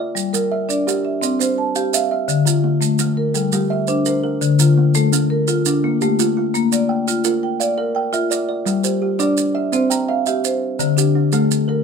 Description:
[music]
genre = southern african traditional, mbira-style interlocking cycle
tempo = 113 BPM (dotted quarters)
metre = 12/8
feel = straight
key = G dorian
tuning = A4 = 436 Hz
[part]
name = kalimba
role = arpeggios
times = 0.0-11.8 s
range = D3 to G5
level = -22 LUFS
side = right 7 dB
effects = none
[part]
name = marimba with medium mallets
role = arpeggios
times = 0.0-11.8 s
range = D3 to Bb5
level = -17 LUFS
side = left 3 dB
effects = none
[part]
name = maracas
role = percussion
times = 0.2-11.7 s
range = none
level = -23 LUFS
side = right 11 dB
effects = none
[sound]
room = light reverb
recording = minimal, uncompressed stereo recording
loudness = -16 LUFS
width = side -6 dB against mid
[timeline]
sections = 0.0-8.7 A section; 8.7-11.8 B section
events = none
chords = 0.2 Gm; 1.2 C; 2.3 Dm; 3.3 Gm; 4.4 Dm; 6.5 Bb; 8.7 G5; 9.7 C; 10.8 D5

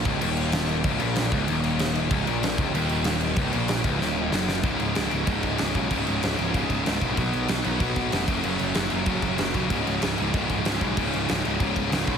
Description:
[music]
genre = punk rock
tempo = 190 BPM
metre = 4/4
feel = straight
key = unclear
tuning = A4 = 440 Hz
[part]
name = cranked stack guitar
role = riff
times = 0.0-12.2 s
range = Db2 to Cb4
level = -32 LUFS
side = equal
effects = overdrive
[part]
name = distorted electric guitar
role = riff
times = 0.0-12.2 s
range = Db2 to Cb4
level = -29 LUFS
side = left 12 dB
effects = overdrive
[part]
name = sludgy distorted guitar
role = riff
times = 0.0-12.2 s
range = Db2 to Cb4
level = -30 LUFS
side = right 8 dB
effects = overdrive
[part]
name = fuzz picked electric bass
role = bass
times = 0.0-12.2 s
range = Db1 to Cb2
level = -29 LUFS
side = equal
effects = overdrive
[part]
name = big rock drum kit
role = drums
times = 0.1-12.1 s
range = crash cymbal, kick drum, snare drum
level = -27 LUFS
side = equal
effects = none
[sound]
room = little or no reverb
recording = heavily compressed radio sound, multiband compression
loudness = -22 LUFS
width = side -7 dB against mid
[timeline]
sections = 0.0-4.6 A section; 4.6-12.2 B section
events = drum fill 4.0-4.6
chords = 0.0 Gb6/Db; 4.6 Db5; 7.2 Cb5; 8.3 Gb5; 9.7 Db5

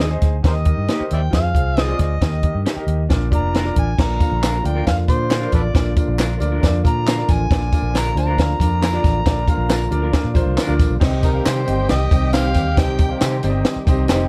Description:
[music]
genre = uptempo 1960s-style soul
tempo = 136 BPM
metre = 4/4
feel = straight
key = unclear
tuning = A4 = 440 Hz
[part]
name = overdriven harmonica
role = melody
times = 0.0-13.2 s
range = Eb4 to Bb5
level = -27 LUFS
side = equal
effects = none
[part]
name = clear grand piano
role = accompaniment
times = 0.0-14.3 s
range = Ab2 to F5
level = -27 LUFS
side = equal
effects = none
[part]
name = electric guitar through a small old amp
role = stabs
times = 0.0-14.2 s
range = Bb3 to C5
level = -31 LUFS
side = equal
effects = tremolo
[part]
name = vintage muted fingered electric bass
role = bass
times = 0.0-14.3 s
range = F1 to C3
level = -23 LUFS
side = equal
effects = none
[part]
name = compact cocktail drum kit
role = drums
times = 0.0-14.2 s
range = crash cymbal, hi-hat, kick drum, snare drum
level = -21 LUFS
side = equal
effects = none
[part]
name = tonewheel organ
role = sustained chords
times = 4.0-14.3 s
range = D3 to G4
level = -32 LUFS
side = equal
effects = none
[part]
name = tambourine and handclaps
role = percussion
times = 4.0-14.2 s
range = none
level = -35 LUFS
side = equal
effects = none
[part]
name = warm studio violin section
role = second line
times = 11.0-14.3 s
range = G4 to G5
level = -34 LUFS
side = equal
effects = none
[sound]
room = little or no reverb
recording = dark, warm production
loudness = -18 LUFS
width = mono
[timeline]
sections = 0.0-4.0 A section; 4.0-11.0 B section; 11.0-14.3 C section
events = none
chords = 0.4 Eb; 1.3 Fm; 2.2 Eb; 3.1 Bb; 11.0 Cm

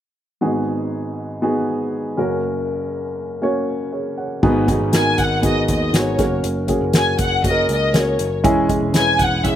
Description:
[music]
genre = piano-driven pop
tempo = 120 BPM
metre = 4/4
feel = straight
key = G# minor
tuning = A4 = 440 Hz
[part]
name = warm upright piano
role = accompaniment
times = 0.4-9.6 s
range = F#1 to F#5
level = -19 LUFS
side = equal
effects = slapback echo
[part]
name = picked electric bass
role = bass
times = 4.4-9.6 s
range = E1 to D#2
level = -24 LUFS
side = equal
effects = none
[part]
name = soft-mallet drum kit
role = drums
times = 4.4-9.6 s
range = crash cymbal, hi-hat, kick drum, snare drum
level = -21 LUFS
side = equal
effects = none
[part]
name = dark studio violin section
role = melody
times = 4.9-9.6 s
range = C#5 to G#5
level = -20 LUFS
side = left 1 dB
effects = slapback echo
[sound]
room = little or no reverb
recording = recorded outdoors, with no room sound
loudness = -17 LUFS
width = side -10 dB against mid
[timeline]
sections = 0.4-4.4 A section; 4.4-9.6 B section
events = none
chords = 0.4 G#m7; 2.2 F#; 4.4 G#m7; 6.2 F#; 8.4 C#m/E

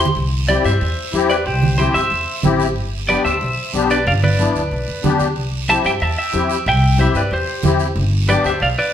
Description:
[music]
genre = latin, cumbia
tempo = 185 BPM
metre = 4/4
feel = straight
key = C major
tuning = A4 = 440 Hz
[part]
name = clean electric guitar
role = melody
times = 0.0-8.9 s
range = G4 to C6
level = -19 LUFS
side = right 1 dB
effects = spring reverb
[part]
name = musette accordion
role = accompaniment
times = 0.0-8.5 s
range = B3 to G4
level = -20 LUFS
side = left 5 dB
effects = none
[part]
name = upright bass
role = bass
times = 0.0-8.7 s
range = G1 to G2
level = -20 LUFS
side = equal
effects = none
[part]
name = congas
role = percussion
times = 0.1-8.8 s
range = none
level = -23 LUFS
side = right 3 dB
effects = none
[part]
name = guiro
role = percussion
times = 0.2-8.9 s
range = none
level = -30 LUFS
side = right 6 dB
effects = none
[sound]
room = wet stone room reverb, RT60 1.1 s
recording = band playing live in one room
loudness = -15 LUFS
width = side -10 dB against mid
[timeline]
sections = 0.2-8.9 A section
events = drum fill 0.0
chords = 0.2 C; 2.8 G; 5.4 C; 8.0 G

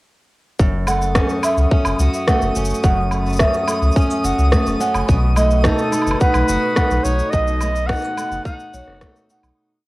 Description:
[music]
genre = folktronica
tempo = 107 BPM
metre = 4/4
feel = straight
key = F# dorian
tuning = A4 = 440 Hz
[part]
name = picked steel-string acoustic guitar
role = arpeggios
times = 0.6-9.9 s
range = F#2 to F#4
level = -22 LUFS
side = equal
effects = vintage 12-bit sampler grit, cassette tape, tape echo
[part]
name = warm sub bass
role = bass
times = 0.6-9.5 s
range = E1 to C#2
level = -19 LUFS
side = equal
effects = none
[part]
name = electronic cabasa, woodblock and rim click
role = drums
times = 0.6-9.5 s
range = none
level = -24 LUFS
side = equal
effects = overdrive, cassette tape
[part]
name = electronic kick drum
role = drums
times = 0.6-9.1 s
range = none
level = -18 LUFS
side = equal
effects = overdrive, cassette tape
[part]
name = twinkling granular texture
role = texture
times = 1.1-9.6 s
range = D#6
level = -30 LUFS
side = left 1 dB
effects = built-in reverb, cassette tape
[part]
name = marimba with medium mallets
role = second line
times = 0.9-9.5 s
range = C#5 to F#5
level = -23 LUFS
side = right 2 dB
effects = cassette tape, analog delay
[part]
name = warm analog pad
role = sustained chords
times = 5.1-9.5 s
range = A3 to B4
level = -28 LUFS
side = equal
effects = none
[part]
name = warm flugelhorn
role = melody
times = 5.6-9.2 s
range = A4 to F#5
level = -22 LUFS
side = equal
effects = cassette tape
[sound]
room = little or no reverb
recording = home recording on cassette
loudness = -15 LUFS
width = side -19 dB against mid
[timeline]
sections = 0.6-9.6 groove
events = fade-out 6.6-9.6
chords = 0.6 F#m; 5.1 B7

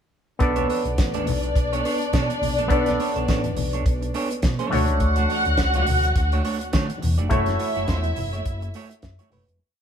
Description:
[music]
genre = disco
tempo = 104 BPM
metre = 4/4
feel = swing 56% on 16ths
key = B minor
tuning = A4 = 440 Hz
[part]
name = dark studio violin section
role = second line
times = 0.4-9.3 s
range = D4 to F#5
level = -26 LUFS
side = left 1 dB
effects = none
[part]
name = auto-wah clav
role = accompaniment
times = 0.4-9.6 s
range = A3 to E5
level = -28 LUFS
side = equal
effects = overdrive
[part]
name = semi-hollow electric guitar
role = accompaniment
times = 0.4-9.5 s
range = A3 to D5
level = -30 LUFS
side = right 4 dB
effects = none
[part]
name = overdriven fingered electric bass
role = bass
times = 0.4-9.6 s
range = E1 to D3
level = -25 LUFS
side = equal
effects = none
[part]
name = damped 70s drum kit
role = drums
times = 0.4-9.6 s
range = hi-hat, kick drum, snare drum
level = -25 LUFS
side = equal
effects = none
[part]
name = congas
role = percussion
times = 0.6-9.5 s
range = none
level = -33 LUFS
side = left 4 dB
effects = none
[sound]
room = moderate stone room reverb, RT60 1.3 s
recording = band playing live in one room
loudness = -20 LUFS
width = side -8 dB against mid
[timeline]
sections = 0.4-9.6 verse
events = fade-out 7.3-9.6; clav fill 8.7-9.6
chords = 0.4 Bm9; 4.7 Dmaj7; 7.3 F#m7

